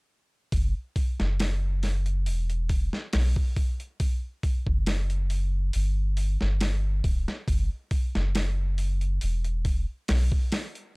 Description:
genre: trip hop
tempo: 69 BPM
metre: 4/4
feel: swing 54% on 16ths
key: unclear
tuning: A4 = 440 Hz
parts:
  - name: soft dub sub bass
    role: bass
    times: 0.5-10.3 s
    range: E1 to B1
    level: -25 LUFS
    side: equal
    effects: none
  - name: boom bap sampler-style drum kit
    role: drums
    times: 0.5-10.9 s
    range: hi-hat, kick drum, snare drum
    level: -28 LUFS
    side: equal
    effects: none
room: little or no reverb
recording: dry, gritty hardware recording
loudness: -24 LUFS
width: side -32 dB against mid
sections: 0.5-11.0 A section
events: none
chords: none

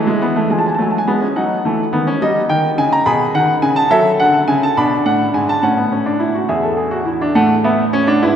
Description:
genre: classical, baroque-style 3-part fugue for grand piano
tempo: 70 BPM (dotted quarters)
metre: 6/8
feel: straight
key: A major from 3.9 s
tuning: A4 = 440 Hz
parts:
  - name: warm baby grand piano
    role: solo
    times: 0.0-8.4 s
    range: E2 to B5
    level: -13 LUFS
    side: equal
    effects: none
room: wet cathedral reverb, RT60 6.2 s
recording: recorded in a church or concert hall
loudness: -13 LUFS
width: side -8 dB against mid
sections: 0.5-7.4 A section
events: none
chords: 0.0 C#m/E (rootless); 0.5 C#7/E#; 1.4 F#m; 2.2 D#7; 3.1 G#m/B; 3.9 F#m; 4.8 Bm; 5.6 A; 6.5 E; 7.4 A

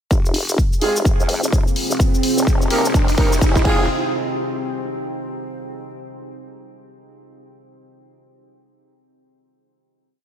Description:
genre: bass house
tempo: 127 BPM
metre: 4/4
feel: swing 60% on 16ths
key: F minor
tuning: A4 = 441 Hz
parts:
  - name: deep dark ambient pad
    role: sustained chords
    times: 1.0-3.9 s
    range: C4 to Ab4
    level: -24 LUFS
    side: equal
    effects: chorus, built-in reverb, sidechain pumping
  - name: vowel-sweep wobble bass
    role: bass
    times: 0.1-3.9 s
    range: Eb1 to F2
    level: -24 LUFS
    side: equal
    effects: chorus, tube saturation, sidechain pumping, high-pass filter
  - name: big-room dance drum kit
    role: drums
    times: 0.1-3.8 s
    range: crash cymbal, hi-hat, shaker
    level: -26 LUFS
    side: left 2 dB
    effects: small room ambience
  - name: electronic kick drum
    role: drums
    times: 0.1-3.8 s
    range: none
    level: -17 LUFS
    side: equal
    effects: small room ambience
  - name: riser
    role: sound effects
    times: 1.4-3.9 s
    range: none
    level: -28 LUFS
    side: right 2 dB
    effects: none
  - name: mellow horn section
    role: stabs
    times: 0.8-3.8 s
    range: Ab3 to Bb4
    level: -24 LUFS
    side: right 2 dB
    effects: sidechain pumping, tape echo
room: little or no reverb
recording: none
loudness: -16 LUFS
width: side -9 dB against mid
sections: 0.1-3.9 build; 3.9-5.8 final hit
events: build-up 0.1-3.9; riser 1.4-3.9; drum fill 2.0-3.9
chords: 0.1 Fm; 2.0 Eb6; 3.7 Fm; 3.9 N.C.

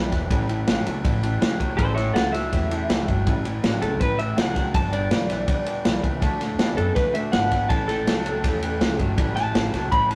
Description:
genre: rockabilly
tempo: 162 BPM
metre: 4/4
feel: straight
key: unclear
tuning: A4 = 436 Hz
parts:
  - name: electric guitar through a small old amp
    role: melody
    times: 0.0-10.2 s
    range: A4 to B5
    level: -28 LUFS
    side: equal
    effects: none
  - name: picked steel-string acoustic guitar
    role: accompaniment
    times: 0.0-10.2 s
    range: A2 to B4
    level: -36 LUFS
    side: equal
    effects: none
  - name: electric guitar through a small old amp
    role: riff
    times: 0.0-10.2 s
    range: G2 to B3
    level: -31 LUFS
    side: equal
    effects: spring reverb
  - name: upright bass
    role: bass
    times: 0.0-10.2 s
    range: E1 to F#2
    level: -30 LUFS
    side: equal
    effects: none
  - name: vintage drum kit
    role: drums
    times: 0.1-10.2 s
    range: kick drum, ride cymbal, snare drum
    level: -26 LUFS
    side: equal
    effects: none
room: light reverb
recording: rough rehearsal-room recording, tube saturation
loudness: -23 LUFS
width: mono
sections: 0.0-10.2 A section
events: none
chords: 0.3 A7; 4.7 G; 6.2 D; 7.7 A7

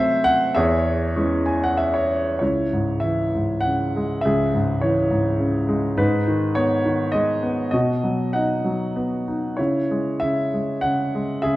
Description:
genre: classical, lyrical solo piano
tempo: 92-107 BPM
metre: 3/4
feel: rubato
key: C# minor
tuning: A4 = 440 Hz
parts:
  - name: warm grand piano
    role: solo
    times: 0.0-11.6 s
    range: C#2 to G#5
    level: -19 LUFS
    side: equal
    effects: none
room: moderate recital hall reverb, RT60 1.6 s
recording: dark, warm production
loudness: -19 LUFS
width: side -17 dB against mid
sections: 0.0-2.4 A section; 2.4-11.6 B section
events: grand piano fill 1.2-2.4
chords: 0.0 Am6/C; 0.6 E6; 2.4 C#m; 6.0 G#m; 7.7 B; 9.6 C#m

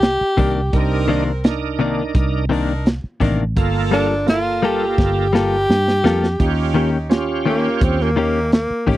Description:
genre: straight-eighth soul blues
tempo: 85 BPM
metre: 4/4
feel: straight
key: unclear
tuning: A4 = 440 Hz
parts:
  - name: clear tenor saxophone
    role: melody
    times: 0.0-8.9 s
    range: Bb3 to G4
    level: -20 LUFS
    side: equal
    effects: none
  - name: brilliant horn section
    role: sustained chords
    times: 0.0-9.0 s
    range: Bb3 to Bb4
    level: -29 LUFS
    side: equal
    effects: none
  - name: vintage muted fingered electric bass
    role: bass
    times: 0.0-9.0 s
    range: G1 to G2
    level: -21 LUFS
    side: equal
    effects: none
  - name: crunchy breakbeat drum kit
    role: drums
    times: 0.0-9.0 s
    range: hi-hat, kick drum, snare drum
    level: -17 LUFS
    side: equal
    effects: none
  - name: direct-recorded clean electric guitar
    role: stabs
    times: 0.4-9.0 s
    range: C3 to A4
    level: -19 LUFS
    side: left 4 dB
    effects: none
  - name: bright tonewheel organ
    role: accompaniment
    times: 0.7-8.1 s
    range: Bb3 to Bb4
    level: -22 LUFS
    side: right 6 dB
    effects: overdrive, chorus vibrato, slow rotary speaker
room: little or no reverb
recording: dry, close 1970s-style studio recording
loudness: -15 LUFS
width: side -15 dB against mid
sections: 0.0-9.0 A section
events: tenor saxophone solo 0.0-9.0; drum fill 5.0-6.4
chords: 0.0 Cm9; 3.6 Gm9; 6.4 Eb7

